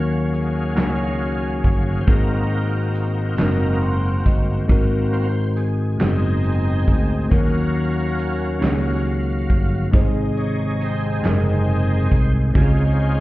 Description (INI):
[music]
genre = slow gospel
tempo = 46 BPM (dotted quarters)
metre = 6/8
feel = straight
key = unclear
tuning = A4 = 440 Hz
[part]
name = bell-like tine electric piano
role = accompaniment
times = 0.0-13.2 s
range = Ab2 to C6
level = -22 LUFS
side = left 1 dB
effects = wide subtle chorus
[part]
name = bright tonewheel organ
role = sustained chords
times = 0.0-13.2 s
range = C3 to F5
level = -26 LUFS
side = right 1 dB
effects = slow rotary speaker, overdrive, chorus vibrato
[part]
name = fingered electric bass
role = bass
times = 0.0-13.2 s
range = Gb1 to Eb2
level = -22 LUFS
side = equal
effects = none
[part]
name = natural country drum kit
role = drums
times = 0.3-13.2 s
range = hi-hat, kick drum, snare drum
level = -18 LUFS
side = equal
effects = none
[part]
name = group handclap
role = percussion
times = 0.8-11.6 s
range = none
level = -35 LUFS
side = right 3 dB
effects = none
[sound]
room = small room reverb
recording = heard muffled through a wall, stone room reverb, EQ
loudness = -17 LUFS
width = side -17 dB against mid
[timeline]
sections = 0.0-13.2 A section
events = tonewheel organ solo 0.0-13.2; tine electric piano fill 3.4-4.7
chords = 0.0 Ebm7; 2.1 Ab7; 7.3 Ebm7; 9.9 Ab; 12.6 Dbmaj7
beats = 0.77 | 2.08 3.39 | 4.70 6.01 | 7.32 8.63 | 9.94 11.24 | 12.55